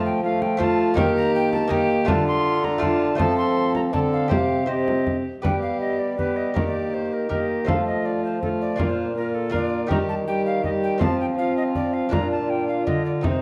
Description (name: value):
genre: classical, renaissance-style consort dance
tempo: 162 BPM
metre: 3/4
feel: straight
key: unclear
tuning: A4 = 440 Hz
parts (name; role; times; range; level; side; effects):
- alto recorder; melody; 0.0-13.4 s; A4 to C6; -30 LUFS; equal; none
- warm viola; second line; 0.0-13.4 s; Eb4 to A4; -30 LUFS; equal; none
- lute; accompaniment; 0.0-13.4 s; Bb2 to D5; -32 LUFS; equal; none
- warm trombone; accompaniment; 0.0-13.4 s; G3 to D4; -29 LUFS; equal; none
- warm bassoon; bass; 0.0-13.4 s; Bb2 to G3; -29 LUFS; equal; none
- frame drum; percussion; 0.4-13.4 s; none; -30 LUFS; equal; none
room: moderate recital hall reverb, RT60 1.6 s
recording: dark, warm production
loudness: -22 LUFS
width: mono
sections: 0.0-5.4 A section; 5.4-13.4 B section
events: none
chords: 0.0 F; 1.0 Eb; 2.1 Dm; 3.2 F; 4.3 Cm; 5.4 G; 6.6 Eb; 7.7 F; 8.8 Bb; 9.9 Eb; 11.0 F5; 12.1 Bb